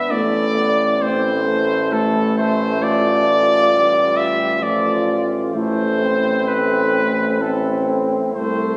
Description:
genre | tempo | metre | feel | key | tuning
classical, hymn-like piece for brass band | 66 BPM | 3/4 | rubato | A minor | A4 = 439 Hz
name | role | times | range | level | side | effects
warm cornet | melody | 0.0-8.8 s | A4 to E5 | -21 LUFS | equal | none
clear French horn section | second line | 0.0-8.8 s | E4 to F4 | -30 LUFS | equal | none
warm euphonium | accompaniment | 0.0-8.8 s | A3 to B3 | -27 LUFS | equal | none
warm trombone | accompaniment | 0.0-8.8 s | F3 to C4 | -26 LUFS | equal | none
clear tuba | bass | 0.1-8.8 s | A1 to C2 | -25 LUFS | equal | none
room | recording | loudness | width
moderate concert hall reverb, RT60 1.8 s | recorded on a phone in the room, studio reverb | -18 LUFS | mono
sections
0.0-8.8 A section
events
none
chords
0.1 Am; 2.8 Dm/A; 5.5 Am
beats
| 0.12 1.02 1.93 | 2.81 3.71 4.62 | 5.54 6.47 7.41 | 8.35

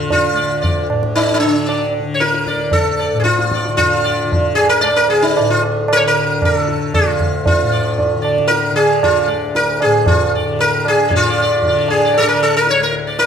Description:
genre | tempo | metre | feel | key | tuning
indian classical, Hindustani | 115 BPM | 7/4 | straight | D raga todi | A4 = 439 Hz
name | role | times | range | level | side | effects
sitar | melody | 0.0-13.3 s | D4 to D5 | -15 LUFS | equal | none
tanpura | drone | 0.0-13.3 s | D2 to D3 | -21 LUFS | left 3 dB | none
tabla | percussion | 0.1-13.3 s | none | -19 LUFS | right 4 dB | none
room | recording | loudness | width
wet recital hall reverb, RT60 1.3 s | none | -13 LUFS | side -8 dB against mid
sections
0.0-11.1 A section; 11.1-13.3 B section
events
none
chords
none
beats
| 0.10 0.63 1.16 1.68 2.21 2.74 3.26 | 3.79 4.31 4.84 5.36 5.89 6.41 6.94 | 7.46 7.98 8.51 9.03 9.55 10.07 10.59 | 11.11 11.63 12.15 12.67 13.19

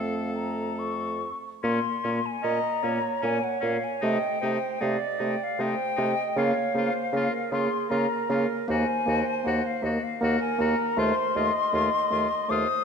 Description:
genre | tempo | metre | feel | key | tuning
classical, slow romantic movement for wind quintet | 77 BPM | 3/4 | rubato | Bb minor | A4 = 440 Hz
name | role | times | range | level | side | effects
mellow hollow silver concert flute | melody | 0.0-12.8 s | Eb5 to Eb6 | -29 LUFS | left 8 dB | none
bright oboe | second line | 0.0-12.7 s | Db4 to A4 | -35 LUFS | left 4 dB | none
warm French horn | accompaniment | 0.0-12.6 s | A3 to Bb3 | -30 LUFS | left 1 dB | none
warm clarinet | accompaniment | 0.0-12.8 s | C4 to Eb5 | -31 LUFS | right 9 dB | none
mellow bassoon | bass | 0.0-12.7 s | Eb2 to Db3 | -31 LUFS | right 3 dB | none
room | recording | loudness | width
wet scoring stage reverb, RT60 1.7 s | none | -24 LUFS | side -6 dB against mid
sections
0.0-1.6 A section; 1.6-12.8 B section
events
none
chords
0.0 F; 1.6 Bbm; 4.0 Adim/C; 6.4 Bbm/Db; 8.7 Cm7b5/Eb; 11.0 F7/Eb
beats
0.79 | 1.63 2.44 3.23 | 4.02 4.80 5.58 | 6.36 7.12 7.90 | 8.68 9.44 10.20 | 10.96 11.73 12.49

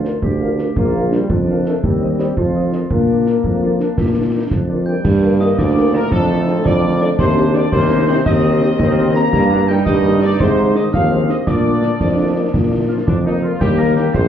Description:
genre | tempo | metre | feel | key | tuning
military-style march for wind band | 112 BPM (dotted quarters) | 6/8 | straight | Eb major from 9.3 s | A4 = 442 Hz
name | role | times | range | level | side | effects
warm woodwind section | second line | 0.0-14.3 s | C4 to Bb5 | -28 LUFS | right 2 dB | analog delay, plate reverb
mellow trombone section | sustained chords | 0.0-14.3 s | Eb3 to Eb4 | -23 LUFS | left 1 dB | plate reverb
clear tuba | bass | 0.0-14.3 s | Bb1 to Bb2 | -16 LUFS | equal | none
concert snare drum, concert bass drum and clash cymbals | drums | 0.0-14.3 s | none | -21 LUFS | right 1 dB | none
dark trumpet section | melody | 0.1-14.2 s | D4 to Bb5 | -24 LUFS | equal | plate reverb
dark French horn section | accompaniment | 0.1-14.0 s | Eb3 to C5 | -24 LUFS | equal | none
clear euphonium | second line | 4.9-14.2 s | A2 to C4 | -25 LUFS | left 6 dB | none
glockenspiel with hard plastic mallets | second line | 4.9-13.4 s | A5 to Bb6 | -33 LUFS | left 2 dB | plate reverb
mellow wooden piccolo | second line | 4.9-14.3 s | A5 to C7 | -33 LUFS | right 3 dB | none
room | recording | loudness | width
light reverb | heard muffled through a wall, club reverb, EQ | -13 LUFS | side -9 dB against mid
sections
0.0-5.0 A section; 5.0-13.6 B section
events
none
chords
0.0 Bb/D; 0.8 Bb; 1.8 Cm/Eb; 2.4 F7; 2.9 Bb; 5.0 Gm; 6.1 Dm/F; 7.2 Cm/Eb; 9.3 Eb/G; 10.4 Ab; 11.5 Bb; 13.6 Eb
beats
0.22 | 0.76 1.29 | 1.83 2.37 | 2.90 3.44 | 3.98 4.51 | 5.05 5.58 | 6.12 6.65 | 7.19 7.72 | 8.26 8.79 | 9.33 9.86 | 10.40 10.93 | 11.47 12.00 | 12.54 13.07 | 13.61 14.14

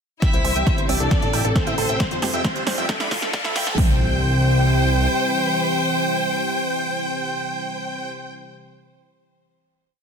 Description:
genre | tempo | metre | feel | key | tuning
uplifting trance | 135 BPM | 4/4 | straight | C major | A4 = 440 Hz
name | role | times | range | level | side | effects
big supersaw lead | melody | 0.2-8.1 s | A4 to B5 | -25 LUFS | equal | sidechain pumping, low-pass filter, digital delay
plucky unison lead | second line | 0.2-8.1 s | A4 to B5 | -32 LUFS | right 1 dB | none
rich chamber violin section | second line | 0.2-8.1 s | C4 to E5 | -26 LUFS | equal | ping-pong delay
lush unison pad | sustained chords | 0.2-8.1 s | C3 to A4 | -28 LUFS | left 1 dB | chorus, sidechain pumping
analog pluck | arpeggios | 0.2-4.0 s | A3 to C5 | -32 LUFS | right 6 dB | chorus, vintage 12-bit sampler grit, sidechain pumping, dub echo
big-room dance drum kit | drums | 0.2-3.9 s | hi-hat, kick drum, toms | -21 LUFS | equal | overdrive
big-room dance drum kit | drums | 0.2-3.8 s | hi-hat, snare drum | -26 LUFS | right 1 dB | overdrive, sidechain pumping on hats
riser | sound effects | 2.2-3.8 s | none | -32 LUFS | left 1 dB | none
fat analog bass | bass | 0.3-5.1 s | G1 to F2 | -23 LUFS | equal | sidechain pumping
room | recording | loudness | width
moderate digital room reverb, RT60 1.2 s, digital ambience | dense, heavily limited modern master, high-pass filter | -18 LUFS | side -6 dB against mid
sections
0.2-3.8 build; 3.8-7.3 final chord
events
build-up 0.2-3.8; drum fill 0.2-3.8; filter sweep on supersaw synth 0.2-3.8; filter sweep on synth arpeggio sound 0.2-3.8; filter sweep 0.2-3.8; riser 2.2-3.8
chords
0.2 C; 1.1 Am; 2.0 Fsus2; 2.9 Dmadd9; 3.8 C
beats
| 0.22 0.67 1.11 1.56 | 2.00 2.45 2.89 3.33 | 3.78 4.22 4.67 5.11 | 5.56 6.00 6.45 6.89

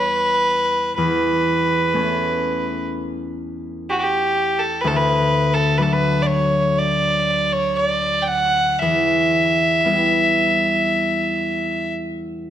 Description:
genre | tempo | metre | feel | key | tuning
celtic folk, Celtic slow air | 54-64 BPM | 4/4 | rubato | E dorian | A4 = 441 Hz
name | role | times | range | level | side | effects
warm fiddle | melody | 0.0-11.9 s | F#4 to G5 | -18 LUFS | right 1 dB | none
concert harp | accompaniment | 0.0-12.5 s | D2 to E4 | -22 LUFS | left 1 dB | none
room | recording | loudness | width
moderate scoring stage reverb, RT60 1.6 s | none | -16 LUFS | side -10 dB against mid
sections
0.0-12.5 A section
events
none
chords
0.0 Em; 1.0 Aadd9/E; 4.8 D; 8.8 Em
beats
0.00 | 0.99 1.96 2.91 3.87 | 4.82 5.78 6.78 7.79 | 8.80 9.82 10.86 11.93

